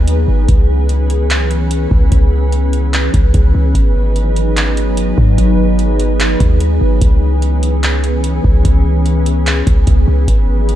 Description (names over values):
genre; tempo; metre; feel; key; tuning
hip hop, atmospheric cloud-rap; 147 BPM; 4/4; half-time; C# minor; A4 = 435 Hz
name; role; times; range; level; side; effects
glassy FM pad; sustained chords; 0.0-10.8 s; E3 to B4; -17 LUFS; equal; ensemble chorus, built-in reverb, sidechain pumping
warm 808-style bass; bass; 0.0-10.8 s; G#1 to G#2; -13 LUFS; equal; none
booming analog drum machine; drums; 0.1-10.8 s; handclaps, hi-hat, kick drum; -14 LUFS; equal; none
room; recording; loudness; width
digital ambience; none; -10 LUFS; side -12 dB against mid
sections
0.0-10.8 A section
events
none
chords
0.5 C#m7; 3.8 G#m7; 7.0 C#m7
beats
0.08 | 0.48 0.89 1.30 1.71 | 2.12 2.53 2.93 3.34 | 3.75 4.16 4.57 4.97 | 5.38 5.79 6.20 6.61 | 7.01 7.42 7.83 8.24 | 8.65 9.06 9.46 9.87 | 10.28 10.69